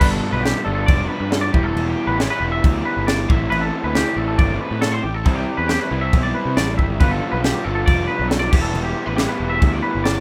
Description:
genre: math rock and midwest emo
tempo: 137 BPM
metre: 4/4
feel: straight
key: C major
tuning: A4 = 440 Hz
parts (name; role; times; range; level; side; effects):
- twelve-string electric guitar; accompaniment; 0.0-1.8 s; G3; -32 LUFS; equal; none
- twangy electric guitar; arpeggios; 0.0-10.2 s; G4 to E5; -26 LUFS; equal; analog chorus
- raw garage guitar; riff; 0.0-10.2 s; G2 to F4; -26 LUFS; equal; overdrive
- fuzz picked electric bass; bass; 0.0-10.2 s; E1 to C3; -26 LUFS; equal; overdrive
- crisp fusion drum kit; drums; 0.0-10.2 s; crash cymbal, kick drum, snare drum; -22 LUFS; equal; none
room: small room reverb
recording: rough home demo mix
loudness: -19 LUFS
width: mono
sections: 0.0-10.2 A section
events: none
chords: 0.0 G9; 1.5 Em7; 3.3 Cmaj9; 7.0 G9; 8.5 Em7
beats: | 0.02 0.45 0.89 1.32 | 1.76 2.20 2.63 3.07 | 3.51 3.94 4.38 4.82 | 5.25 5.69 6.13 6.57 | 7.00 7.44 7.88 8.31 | 8.75 9.19 9.62 10.06

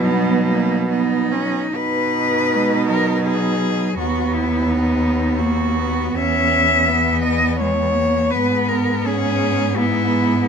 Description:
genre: classical, lyrical piece for cello ensemble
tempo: 82 BPM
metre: 3/4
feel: uneven beats, rubato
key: B major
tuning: A4 = 440 Hz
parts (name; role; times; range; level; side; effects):
- rich cello; melody; 0.0-10.5 s; D#4 to E5; -20 LUFS; left 3 dB; none
- rich cello; accompaniment; 0.0-10.5 s; F#3 to C#4; -21 LUFS; left 2 dB; none
- rich cello; bass; 0.0-10.5 s; D#2 to B2; -23 LUFS; right 2 dB; none
- rich cello; second line; 0.1-10.5 s; A#3 to D#4; -23 LUFS; right 10 dB; none
room: moderate large studio reverb, RT60 1.3 s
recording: close, detailed microphones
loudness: -16 LUFS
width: side -6 dB against mid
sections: 0.0-1.7 A section; 1.7-10.5 A section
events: none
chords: 0.0 B; 4.0 B/D#; 6.2 E5; 8.3 E/G#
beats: 0.06 0.89 | 1.75 2.51 3.24 | 3.98 4.70 5.40 | 6.17 6.88 7.60 | 8.32 9.05 9.78

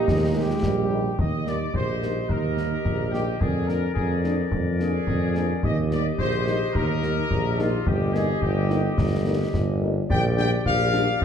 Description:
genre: military-style march for wind band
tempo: 108 BPM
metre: 2/4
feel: straight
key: Eb major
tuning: A4 = 440 Hz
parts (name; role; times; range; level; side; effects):
- clear trumpet section; melody; 0.0-11.2 s; Eb4 to G5; -29 LUFS; left 2 dB; none
- clear euphonium; second line; 0.0-0.9 s; G4; -28 LUFS; right 3 dB; none
- mellow piccolo; second line; 0.0-0.9 s; Eb5; -38 LUFS; equal; none
- warm woodwind section; second line; 0.0-11.2 s; G4 to Eb5; -31 LUFS; left 1 dB; none
- bright trombone section; sustained chords; 0.0-1.1 s; G3 to Ab3; -31 LUFS; right 4 dB; none
- clear tuba; bass; 0.1-11.2 s; G1 to F2; -24 LUFS; right 1 dB; none
- concert snare drum and concert bass drum; drums; 0.1-11.2 s; none; -28 LUFS; left 1 dB; none
- dark French horn section; accompaniment; 0.3-11.0 s; F3 to Eb4; -33 LUFS; left 3 dB; none
room: wet recital hall reverb, RT60 1.6 s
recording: dark, warm production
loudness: -21 LUFS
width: side -8 dB against mid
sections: 0.0-1.2 A section; 1.2-11.2 B section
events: none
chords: 0.0 Eb; 3.4 Bb7/F; 5.6 Eb; 7.9 Eb/G; 10.1 Gm/Bb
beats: | 0.07 0.63 | 1.19 1.74 | 2.30 2.86 | 3.41 3.97 | 4.53 5.08 | 5.64 6.20 | 6.75 7.31 | 7.87 8.43 | 8.98 9.54 | 10.10 10.65 | 11.21

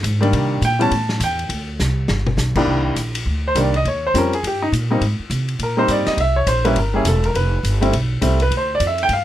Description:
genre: jazz piano trio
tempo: 205 BPM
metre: 4/4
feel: swing 62% on 8ths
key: C minor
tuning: A4 = 441 Hz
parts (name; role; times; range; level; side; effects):
- upright bass; bass; 0.0-9.2 s; E1 to C3; -20 LUFS; equal; none
- vintage drum kit; drums; 0.0-9.2 s; crash cymbal, hi-hat, kick drum, ride cymbal, snare drum, toms; -26 LUFS; left 2 dB; none
- warm baby grand piano; melody; 0.2-9.2 s; C2 to A5; -18 LUFS; equal; none
room: little or no reverb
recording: none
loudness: -16 LUFS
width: side -12 dB against mid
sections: 0.0-2.7 A section; 2.7-9.2 B section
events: drum fill 1.8-2.4; grand piano solo 2.7-9.2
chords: 0.3 Cm9; 0.9 A5; 1.5 Csus2; 2.1 G; 2.7 Cm9; 3.8 Eb13; 5.0 Abmaj9; 6.2 C7b9; 7.3 Fmaj9; 8.5 Dm9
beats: 0.04 | 0.33 0.62 0.92 1.21 | 1.50 1.79 2.09 2.38 | 2.67 2.97 3.26 3.55 | 3.84 4.14 4.43 4.72 | 5.01 5.31 5.60 5.89 | 6.18 6.47 6.76 7.06 | 7.35 7.64 7.93 8.22 | 8.51 8.80 9.10

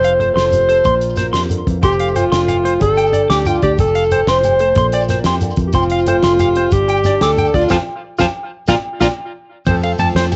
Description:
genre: highlife guitar band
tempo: 122 BPM (dotted quarters)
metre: 12/8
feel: straight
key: F major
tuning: A4 = 441 Hz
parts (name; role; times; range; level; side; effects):
- mellow alto saxophone; melody; 0.0-9.1 s; F4 to C5; -17 LUFS; equal; tape echo
- fingerpicked swing-style acoustic guitar; accompaniment; 0.0-10.4 s; Bb2 to A4; -27 LUFS; equal; cassette tape
- clean electric guitar; arpeggios; 0.0-10.2 s; C5 to D6; -22 LUFS; equal; cassette tape, tape echo
- fingered electric bass; bass; 0.0-10.4 s; F1 to F2; -23 LUFS; equal; none
- warm soul drum kit; drums; 0.0-10.4 s; hi-hat, kick drum, ride cymbal, snare drum; -24 LUFS; equal; cassette tape
- shekere; percussion; 0.0-10.4 s; none; -25 LUFS; equal; none
- agogo bells; percussion; 1.8-10.4 s; none; -28 LUFS; equal; none
room: moderate studio reverb, RT60 0.6 s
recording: home recording on cassette, nothing above 8.0 kHz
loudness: -15 LUFS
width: mono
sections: 0.0-9.7 A section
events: band accent 7.7-9.7; drum fill 9.5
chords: 0.0 F; 0.8 Bbadd9; 1.8 F; 2.8 Gsus2; 3.8 F; 4.8 Bbadd9; 5.7 F; 6.7 Gsus2; 7.7 F; 8.7 Bbadd9; 9.7 F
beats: 0.36 0.85 1.34 | 1.83 2.32 2.81 3.29 | 3.78 4.27 4.76 5.25 | 5.74 6.23 6.72 7.21 | 7.70 8.19 8.68 9.17 | 9.66 10.15

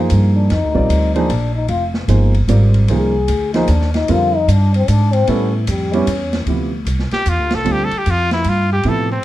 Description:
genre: modal jazz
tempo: 151 BPM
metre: 3/4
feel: swing 64% on 8ths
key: unclear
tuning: A4 = 440 Hz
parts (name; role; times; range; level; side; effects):
- warm upright piano; accompaniment; 0.0-9.1 s; C3 to D5; -19 LUFS; right 3 dB; none
- upright bass; bass; 0.0-9.2 s; F1 to A2; -16 LUFS; equal; none
- open jazz drum kit; drums; 0.1-9.0 s; hi-hat, kick drum, ride cymbal, snare drum; -27 LUFS; equal; none
- trombone with cup mute; second line; 0.4-6.4 s; E3 to Ab4; -20 LUFS; left 4 dB; none
- clear trumpet; melody; 7.1-9.2 s; C4 to A4; -18 LUFS; equal; plate reverb
room: light reverb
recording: dark, warm production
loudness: -13 LUFS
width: side -14 dB against mid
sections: 0.0-6.5 A section; 6.5-9.2 A section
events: trombone solo 0.0-6.5; trumpet solo 6.5-9.2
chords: 0.0 Bb/F; 1.7 Fm7; 4.1 Bb/F; 5.3 A7; 6.5 Dm11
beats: 0.11 | 0.51 0.90 1.30 | 1.70 2.10 2.49 | 2.89 3.29 3.69 | 4.08 4.48 4.88 | 5.27 5.67 6.07 | 6.46 6.86 7.26 | 7.66 8.05 8.45 | 8.85 9.24

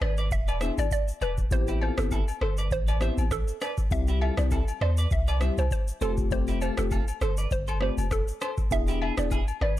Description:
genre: afrobeats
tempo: 100 BPM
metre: 4/4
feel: swing 55% on 16ths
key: A minor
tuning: A4 = 438 Hz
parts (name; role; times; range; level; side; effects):
- hollow square pluck; melody; 0.0-9.8 s; A4 to E5; -33 LUFS; right 2 dB; chorus
- clean electric guitar; riff; 0.0-9.7 s; E4 to E5; -36 LUFS; right 3 dB; analog chorus
- punchy sub bass; bass; 0.0-9.8 s; E1 to E2; -27 LUFS; equal; none
- booming analog drum machine; drums; 0.0-9.8 s; kick drum, rim click, shaker; -29 LUFS; equal; overdrive
- agogo bells and woodblock; percussion; 0.5-9.6 s; none; -40 LUFS; left 10 dB; none
- mellow tine electric piano; accompaniment; 0.6-9.4 s; G3 to G#4; -33 LUFS; left 6 dB; analog chorus
room: little or no reverb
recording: none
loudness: -24 LUFS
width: side -14 dB against mid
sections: 0.0-9.8 A section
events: none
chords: 0.0 E7; 1.5 Am7; 3.9 C; 6.0 Fadd9; 8.7 E7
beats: 0.31 0.91 | 1.51 2.11 2.71 3.31 | 3.91 4.51 5.11 5.71 | 6.31 6.91 7.51 8.11 | 8.71 9.31

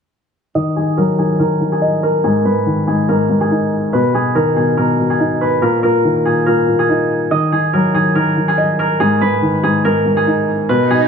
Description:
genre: hip hop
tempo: 142 BPM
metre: 4/4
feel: half-time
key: Eb minor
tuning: A4 = 440 Hz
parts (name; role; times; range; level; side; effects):
- felt-muted upright piano; accompaniment; 0.5-11.1 s; Ab2 to Eb5; -15 LUFS; left 2 dB; low-pass filter
- concert harp; melody; 0.6-11.1 s; Ab4 to Eb5; -16 LUFS; right 2 dB; low-pass filter, digital delay
- swell; sound effects; 10.8-11.1 s; none; -17 LUFS; right 8 dB; none
room: moderate scoring stage reverb, RT60 1.6 s, small room ambience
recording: none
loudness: -13 LUFS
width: side -6 dB against mid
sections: 0.6-11.1 A section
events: filter sweep 0.6-11.1; swell 10.8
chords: 0.6 Ebm; 2.2 Abm; 3.9 B; 5.6 Bbsus4; 7.3 Ebm; 9.0 Abm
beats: | 0.55 0.97 1.40 1.82 | 2.24 2.66 3.08 3.51 | 3.93 4.35 4.78 5.20 | 5.62 6.04 6.46 6.89 | 7.31 7.73 8.15 8.58 | 9.00 9.42 9.85 10.27 | 10.69

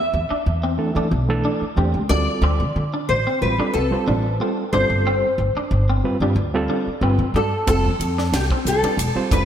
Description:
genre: electric jazz fusion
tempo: 92 BPM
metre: 4/4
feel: straight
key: D dorian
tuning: A4 = 440 Hz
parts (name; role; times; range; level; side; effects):
- nylon-string guitar; melody; 0.0-9.4 s; G4 to E5; -23 LUFS; left 1 dB; ensemble chorus
- overdriven reed electric piano; accompaniment; 0.1-9.4 s; E3 to C5; -24 LUFS; right 3 dB; fast tremolo
- upright bass; bass; 0.1-9.4 s; E1 to E3; -21 LUFS; equal; none
- clean electric guitar; stabs; 0.3-9.4 s; C4 to D4; -27 LUFS; left 1 dB; ensemble chorus, ping-pong delay
- tight funk drum kit; drums; 7.7-9.4 s; hi-hat, kick drum, ride cymbal, snare drum; -24 LUFS; equal; gated reverb
room: moderate lush hall reverb, RT60 2.1 s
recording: bright 1980s-style digital production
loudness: -18 LUFS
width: side -9 dB against mid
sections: 0.0-9.4 A section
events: none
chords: 0.0 Em7; 2.1 Dm7; 4.7 G7sus4; 7.7 F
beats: 0.46 1.12 1.78 | 2.43 3.09 3.75 4.40 | 5.06 5.71 6.37 7.03 | 7.68 8.34 8.99

